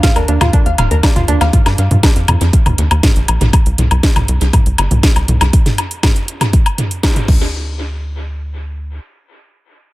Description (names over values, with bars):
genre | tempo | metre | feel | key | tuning
melodic techno | 120 BPM | 4/4 | straight | unclear | A4 = 437 Hz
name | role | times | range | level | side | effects
woody wave-folded pluck | arpeggios | 0.0-1.4 s | D4 to F5 | -20 LUFS | right 1 dB | chorus, vintage 12-bit sampler grit, sidechain pumping, dub echo
electronic kick drum | drums | 0.0-7.4 s | none | -12 LUFS | equal | none
house drum kit | drums | 0.0-7.4 s | crash cymbal, hi-hat, snare drum, toms, woodblock | -16 LUFS | equal | dub echo
tight sequencer bass | bass | 0.2-9.0 s | Eb1 to G2 | -14 LUFS | equal | sidechain pumping
room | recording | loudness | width
light reverb, digital ambience | echo-heavy mix | -10 LUFS | side -18 dB against mid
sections
0.0-7.5 A section; 7.5-9.9 B section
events
drop 0.0-7.5; band accent 7.0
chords
0.0 Eb5; 3.5 C5; 7.3 N.C.